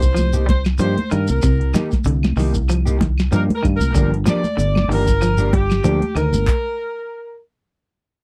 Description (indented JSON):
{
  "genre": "afrobeat",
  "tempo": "95 BPM",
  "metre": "4/4",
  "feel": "swing 55% on 16ths",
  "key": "C minor",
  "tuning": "A4 = 440 Hz",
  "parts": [
    { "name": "warm horn section", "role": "melody", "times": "0.0-7.4 s", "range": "G4 to D5", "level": "-26 LUFS", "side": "equal", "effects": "none" },
    { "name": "electric guitar at the edge of break-up", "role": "stabs", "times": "0.0-6.2 s", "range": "F3 to G4", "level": "-28 LUFS", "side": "equal", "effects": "none" },
    { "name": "fingered electric bass", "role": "bass", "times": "0.0-6.5 s", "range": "G1 to G2", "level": "-21 LUFS", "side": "equal", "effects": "none" },
    { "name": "soft vintage rhythm box", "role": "drums", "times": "0.0-6.6 s", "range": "handclaps, hi-hat, kick drum, snare drum", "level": "-22 LUFS", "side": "equal", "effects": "overdrive" },
    { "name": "shekere", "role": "percussion", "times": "0.0-6.5 s", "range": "none", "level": "-28 LUFS", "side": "equal", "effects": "none" },
    { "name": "electric guitar at the edge of break-up", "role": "arpeggios", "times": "0.1-6.3 s", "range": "C3 to G3", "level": "-26 LUFS", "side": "equal", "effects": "none" },
    { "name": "claves", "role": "percussion", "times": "0.2-6.3 s", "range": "none", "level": "-40 LUFS", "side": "equal", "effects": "none" },
    { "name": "congas", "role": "percussion", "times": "0.2-6.5 s", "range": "none", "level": "-27 LUFS", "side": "equal", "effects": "none" }
  ],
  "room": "light reverb",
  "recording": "dry, close 1970s-style studio recording",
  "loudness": "-18 LUFS",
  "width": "mono",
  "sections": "0.0-8.2 A section",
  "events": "stop 6.5-8.2",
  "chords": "0.0 Cm7; 4.0 Gm7",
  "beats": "0.17 0.81 | 1.44 2.07 2.70 3.33 | 3.96 4.59 5.22 5.85 | 6.48 7.11"
}